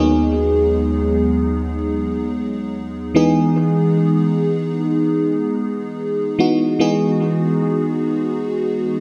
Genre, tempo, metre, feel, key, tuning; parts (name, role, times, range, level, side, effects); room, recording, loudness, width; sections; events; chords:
R&B; free time; A4 = 437 Hz
FM electric piano with soft pad layer; solo; 0.0-9.0 s; D#2 to C#5; -18 LUFS; equal; chorus, phaser, analog delay
wet plate reverb, RT60 2.4 s; dreamy mix soaked in reverb; -18 LUFS; mono
0.0-9.0 A section
0.0 G#m7/D#; 3.2 Emaj7